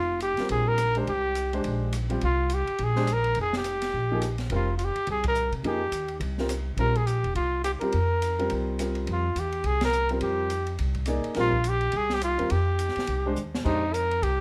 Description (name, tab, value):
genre	modal jazz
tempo	210 BPM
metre	4/4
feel	swing 60% on 8ths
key	F dorian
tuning	A4 = 441 Hz
part	mellow trumpet	melody	0.0-14.4 s	Eb4 to Bb4	-29 LUFS	equal	none
part	upright bass	bass	0.0-14.4 s	E1 to C3	-31 LUFS	equal	none
part	open jazz drum kit	drums	0.2-14.3 s	crash cymbal, hi-hat, kick drum, ride cymbal, rim click, snare drum	-40 LUFS	equal	none
part	clear upright piano	accompaniment	0.4-13.8 s	F3 to D5	-33 LUFS	equal	none
room	light reverb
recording	none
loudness	-27 LUFS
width	mono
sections	0.0-14.4 A section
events	band accent 5.2, 9.8; drum fill 13.4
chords	0.0 Fsus4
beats	0.22 0.51 0.79 | 1.08 1.36 1.65 1.93 | 2.22 2.50 2.79 3.08 | 3.36 3.65 3.93 4.22 | 4.50 4.79 5.07 5.36 | 5.64 5.93 6.21 6.50 | 6.79 7.07 7.36 7.64 | 7.93 8.21 8.50 8.79 | 9.07 9.36 9.64 9.93 | 10.22 10.50 10.79 11.07 | 11.36 11.65 11.94 12.22 | 12.51 12.79 13.08 13.37 | 13.66 13.94 14.23